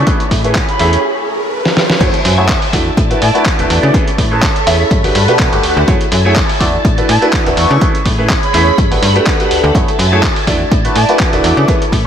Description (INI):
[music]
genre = filtered disco house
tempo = 124 BPM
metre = 4/4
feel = swing 54% on 16ths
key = unclear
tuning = A4 = 440 Hz
[part]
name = silver concert flute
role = melody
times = 0.0-11.1 s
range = A5 to C#6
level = -21 LUFS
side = equal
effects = sidechain pumping, low-pass filter, diffuse ambient delay
[part]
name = bright concert grand piano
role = accompaniment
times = 0.0-12.1 s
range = A3 to E5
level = -16 LUFS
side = equal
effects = phaser, sidechain pumping, low-pass filter
[part]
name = phased string machine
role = sustained chords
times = 0.0-12.1 s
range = E4 to B5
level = -18 LUFS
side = right 1 dB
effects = ensemble chorus, phaser, sidechain pumping, low-pass filter
[part]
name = slap-like FM bass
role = bass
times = 0.0-12.1 s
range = E1 to C#3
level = -15 LUFS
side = equal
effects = sidechain pumping, low-pass filter
[part]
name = riser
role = sound effects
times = 0.2-2.0 s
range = none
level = -21 LUFS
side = right 1 dB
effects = none
[part]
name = dusty soul sampler-style drum kit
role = drums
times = 0.1-12.0 s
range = crash cymbal, handclaps, hi-hat, snare drum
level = -18 LUFS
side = equal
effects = sidechain pumping on hats, sidechain pumping on cymbals
[part]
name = electronic kick drum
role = drums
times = 0.1-12.0 s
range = none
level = -14 LUFS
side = equal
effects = none
[sound]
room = moderate lush hall reverb, RT60 2.5 s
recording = dreamy mix soaked in reverb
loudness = -9 LUFS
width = side -8 dB against mid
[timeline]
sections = 0.0-2.0 A section; 2.0-12.1 B section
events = riser 0.2-2.0; drum fill 1.6-2.0; drop 2.0-12.1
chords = 0.1 Amaj9; 1.0 N.C.; 2.0 F#m9; 2.7 E7sus4; 3.9 Amaj9; 4.9 Gmaj9; 5.9 F#m9; 6.6 E7sus4; 7.8 Amaj9; 8.8 Gmaj9; 9.7 F#m9; 10.5 E7sus4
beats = | 0.07 0.56 1.04 1.52 | 2.01 2.49 2.98 3.46 | 3.94 4.43 4.91 5.39 | 5.88 6.36 6.85 7.33 | 7.81 8.30 8.78 9.27 | 9.75 10.23 10.72 11.20 | 11.69